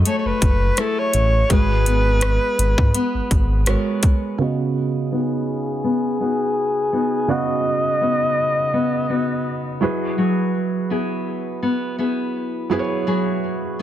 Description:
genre	contemporary R&B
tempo	83 BPM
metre	4/4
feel	swing 54% on 16ths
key	C# minor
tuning	A4 = 438 Hz
part	felt-muted upright piano	accompaniment	0.0-13.8 s	C#3 to F#5	-25 LUFS	right 6 dB	low-pass filter
part	nylon-string guitar	arpeggios	0.0-13.8 s	C#3 to A#4	-23 LUFS	left 2 dB	low-pass filter
part	smooth gliding synth bass	bass	0.0-3.8 s	F#1 to G#2	-19 LUFS	equal	none
part	warm alto saxophone	melody	0.1-9.8 s	G#4 to D#5	-22 LUFS	left 1 dB	low-pass filter, ping-pong delay
part	trap drum kit	drums	0.1-4.2 s	hi-hat, kick drum, rim click	-19 LUFS	equal	soft clipping on snare
room	small room ambience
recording	dense, heavily limited modern master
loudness	-18 LUFS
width	side -11 dB against mid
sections	0.0-4.4 A section; 4.4-13.8 B section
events	filter sweep 4.4-13.8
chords	0.0 F#m9; 1.5 G#m9; 4.4 C#9sus4; 9.8 F#9sus4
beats	0.06 0.78 | 1.50 2.23 2.95 3.67 | 4.39 5.12 5.84 6.56 | 7.29 8.01 8.73 9.45 | 10.18 10.90 11.62 12.35 | 13.07 13.79

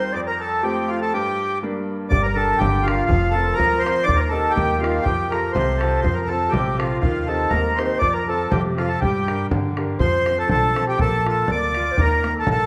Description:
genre	celtic folk, Celtic polka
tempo	122 BPM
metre	2/4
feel	swing 54% on 8ths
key	unclear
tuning	A4 = 439 Hz
part	accordion	melody	0.0-12.7 s	F4 to D5	-24 LUFS	equal	none
part	baroque flute	second line	0.0-12.7 s	F4 to D5	-30 LUFS	equal	none
part	bright upright piano	accompaniment	0.0-12.7 s	Eb2 to Bb4	-28 LUFS	equal	none
part	upright bass	bass	2.1-12.7 s	F1 to G2	-27 LUFS	equal	none
part	bodhran	percussion	2.1-12.6 s	none	-29 LUFS	equal	none
room	wet recital hall reverb, RT60 1.5 s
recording	none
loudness	-20 LUFS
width	mono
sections	0.0-2.1 A section; 2.1-10.0 A section; 10.0-12.7 B section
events	none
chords	0.1 F; 1.1 Gm; 3.1 Bbsus2/F; 4.1 Eb; 5.1 Fadd9; 6.0 F; 7.0 Eb6; 8.0 F; 9.0 Gm; 10.0 F5; 11.0 Bb; 12.0 Eb5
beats	| 0.14 0.63 | 1.12 1.61 | 2.10 2.59 | 3.09 3.58 | 4.07 4.56 | 5.05 5.55 | 6.04 6.53 | 7.03 7.52 | 8.01 8.51 | 9.00 9.50 | 9.99 10.49 | 10.98 11.48 | 11.97 12.47

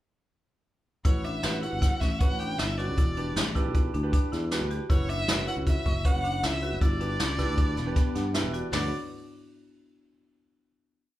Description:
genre	progressive instrumental, band music in an uneven meter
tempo	156 BPM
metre	5/4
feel	straight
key	D major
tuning	A4 = 440 Hz
part	warm violin	melody	1.0-8.9 s	C#5 to G5	-33 LUFS	equal	none
part	marimba with medium hard mallets	arpeggios	1.0-8.9 s	B3 to G4	-35 LUFS	left 2 dB	none
part	jazz brush drum kit	drums	1.0-8.8 s	hi-hat, kick drum, snare drum, toms	-26 LUFS	equal	none
part	clear grand piano	accompaniment	1.1-8.9 s	C#4 to F#5	-37 LUFS	right 5 dB	none
part	sustaining fretless electric bass	bass	1.1-8.9 s	E1 to G2	-32 LUFS	equal	none
room	light reverb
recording	band playing live in one room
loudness	-25 LUFS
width	side -14 dB against mid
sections	1.1-8.7 A section; 8.7-10.6 final chord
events	grand piano fill 8.0-8.7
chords	1.1 A7; 3.0 Em7; 4.9 Dadd9/F#; 6.8 G; 8.7 D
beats	| 1.05 1.44 1.82 2.21 2.59 | 2.98 3.36 3.75 4.13 4.51 | 4.90 5.28 5.67 6.05 6.43 | 6.81 7.20 7.58 7.96 8.34 | 8.72

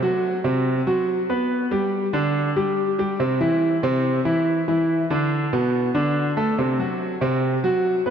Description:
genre	latin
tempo	142 BPM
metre	4/4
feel	straight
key	unclear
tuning	A4 = 440 Hz
part	clear concert grand piano	solo	0.0-8.1 s	B2 to B4	-19 LUFS	equal	analog delay
room	wet lush hall reverb, RT60 2.6 s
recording	dreamy mix soaked in reverb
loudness	-19 LUFS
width	side -8 dB against mid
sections	0.0-8.1 A section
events	none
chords	0.0 B5; 1.5 G; 3.2 C; 4.9 E5; 6.6 N.C.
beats	0.23 0.66 1.08 | 1.50 1.93 2.35 2.77 | 3.20 3.62 4.04 4.47 | 4.89 5.31 5.74 6.16 | 6.58 7.01 7.43 7.85

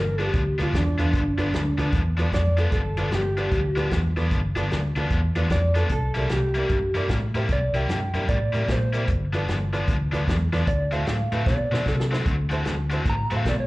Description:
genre	electric blues shuffle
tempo	151 BPM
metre	4/4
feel	swing 63% on 8ths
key	G mixolydian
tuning	A4 = 435 Hz
part	electric slide guitar	melody	0.0-13.7 s	D4 to Bb5	-28 LUFS	right 1 dB	plate reverb, slapback echo
part	cranked stack guitar	riff	0.0-13.5 s	G2 to F#4	-29 LUFS	left 2 dB	overdrive, slapback echo
part	vintage muted fingered electric bass	bass	0.0-13.7 s	G1 to C3	-24 LUFS	equal	none
part	tack piano	accompaniment	0.2-13.4 s	E4 to F5	-34 LUFS	right 2 dB	plate reverb
part	vintage drum kit	drums	0.2-13.6 s	hi-hat, kick drum, snare drum	-27 LUFS	equal	none
room	light reverb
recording	live gig heard through the venue's PA, cassette tape, club reverb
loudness	-21 LUFS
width	side -20 dB against mid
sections	0.0-13.7 A section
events	drum fill 11.5-12.3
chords	0.0 G7; 5.9 C7; 9.1 G7; 10.7 D7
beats	0.34 0.73 | 1.13 1.53 1.93 2.32 | 2.72 3.12 3.52 3.91 | 4.31 4.71 5.11 5.50 | 5.90 6.30 6.70 7.09 | 7.49 7.89 8.29 8.68 | 9.08 9.48 9.88 10.27 | 10.67 11.07 11.47 11.86 | 12.26 12.66 13.06 13.46

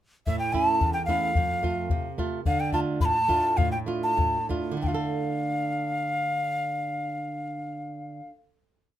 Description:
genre	andean folk, Andean ensemble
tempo	88-110 BPM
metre	2/4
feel	straight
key	D minor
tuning	A4 = 445 Hz
part	breathy hollow quena	melody	0.3-8.3 s	E5 to B5	-26 LUFS	left 1 dB	none
part	flamenco guitar	accompaniment	0.3-8.4 s	E2 to A4	-30 LUFS	right 4 dB	none
part	bombo	percussion	0.3-5.1 s	none	-28 LUFS	left 2 dB	none
room	light reverb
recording	minimal, uncompressed stereo recording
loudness	-24 LUFS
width	side -12 dB against mid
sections	0.3-4.8 A section; 4.8-7.5 final chord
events	slowing down 2.4-4.8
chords	0.3 A; 1.4 F; 2.4 Dm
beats	| 0.27 0.81 | 1.35 1.90 | 2.44 3.00 | 3.57 4.17 | 4.82 5.50 | 6.19 6.87

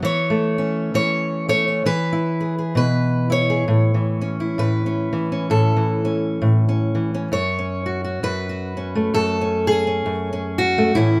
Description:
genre	folk, solo fingerstyle acoustic guitar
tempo	66 BPM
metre	4/4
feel	swing 59% on 8ths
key	unclear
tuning	A4 = 440 Hz
part	fingerpicked steel-string acoustic guitar	solo	0.0-11.2 s	F#2 to C#5	-20 LUFS	equal	none
room	moderate studio reverb, RT60 0.5 s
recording	none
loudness	-21 LUFS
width	mono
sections	0.0-7.3 A section; 7.3-11.2 B section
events	none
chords	0.0 A/E; 1.9 E; 3.7 A; 7.3 F#m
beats	| 0.03 0.94 1.85 2.77 | 3.67 4.58 5.49 6.40 | 7.31 8.22 9.13 10.04 | 10.95

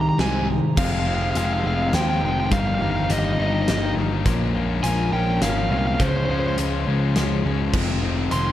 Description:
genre	post-rock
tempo	104 BPM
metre	3/4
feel	straight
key	F minor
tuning	A4 = 439 Hz
part	overdriven electric guitar	melody	0.0-8.5 s	C5 to C6	-26 LUFS	right 2 dB	digital delay
part	rich chamber string section	sustained chords	0.0-8.5 s	C3 to C5	-35 LUFS	equal	none
part	twelve-string electric guitar	arpeggios	0.0-8.5 s	F2 to G4	-28 LUFS	left 2 dB	digital delay
part	distorted electric guitar	riff	0.0-8.5 s	F2 to Eb4	-26 LUFS	left 6 dB	distortion
part	sludgy distorted guitar	riff	0.0-0.8 s	Ab2 to Ab3	-26 LUFS	right 8 dB	overdrive
part	fuzz picked electric bass	bass	0.0-8.5 s	F1 to Eb2	-24 LUFS	equal	overdrive
part	huge arena drum kit	drums	0.2-8.4 s	crash cymbal, hi-hat, kick drum, snare drum	-27 LUFS	equal	none
room	little or no reverb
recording	dark, warm production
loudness	-19 LUFS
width	side -12 dB against mid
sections	0.8-8.5 A section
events	none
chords	0.0 Abmaj7/C; 0.8 Fm7; 2.5 Ebadd9/G; 4.3 Bbm7; 6.0 Dbmaj7; 7.7 Fm7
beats	0.20 | 0.78 1.36 1.94 | 2.52 3.10 3.68 | 4.26 4.84 5.42 | 6.00 6.58 7.16 | 7.74 8.32

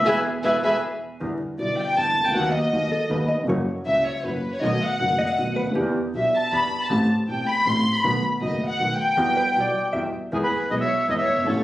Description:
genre	tango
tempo	158 BPM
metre	3/4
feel	rubato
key	E minor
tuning	A4 = 440 Hz
part	bandoneon	melody	0.0-0.8, 10.3-11.6 s	G#4 to G#5	-22 LUFS	equal	none
part	dark studio violin section	second line	0.0-11.6 s	E4 to C6	-23 LUFS	equal	none
part	dark baby grand piano	accompaniment	0.0-11.6 s	E1 to A4	-26 LUFS	equal	none
part	clear double bass	bass	0.0-11.6 s	E1 to E2	-30 LUFS	right 1 dB	none
part	hollow-body jazz guitar	second line	0.3-6.0, 9.4-10.3 s	G4 to E5	-28 LUFS	equal	none
room	wet studio reverb, RT60 0.5 s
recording	recorded on a phone in the room, studio reverb, vinyl crackle, compression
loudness	-20 LUFS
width	side -15 dB against mid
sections	0.0-1.2 A section; 1.2-10.3 B section; 10.3-11.6 A section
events	band accent 0.1-1.2; violin section solo 1.2-10.3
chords	0.1 E; 1.2 Em7; 2.3 B/D#; 3.5 F#7; 4.6 B7; 5.8 Em7; 6.9 Am7; 8.0 B7; 9.2 Emadd9; 10.3 E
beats	| 0.06 0.44 0.82 | 1.21 1.59 1.97 | 2.35 2.72 3.10 | 3.48 3.86 4.24 | 4.62 5.00 5.38 | 5.76 6.14 6.52 | 6.90 7.28 7.66 | 8.04 8.42 8.79 | 9.17 9.55 9.94 | 10.32 10.70 11.08 | 11.46

